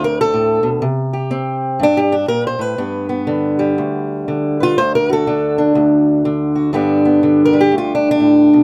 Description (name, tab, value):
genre	acoustic country blues, solo or duo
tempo	122 BPM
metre	4/4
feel	swing 61% on 8ths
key	G major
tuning	A4 = 444 Hz
part	fingerpicked old ladder-braced acoustic guitar	solo	0.0-8.6 s	D2 to C5	-15 LUFS	equal	none
room	light reverb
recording	close, detailed microphones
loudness	-15 LUFS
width	mono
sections	0.0-6.8 A section; 6.8-8.6 A section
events	steel-string acoustic guitar solo 0.0-6.8, 6.8-8.6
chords	0.0 D5; 0.8 C5; 2.8 G; 4.8 D; 6.8 G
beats	0.34 | 0.84 1.33 1.82 2.31 | 2.81 3.30 3.79 4.28 | 4.78 5.27 5.76 6.26 | 6.75 7.25 7.74 8.23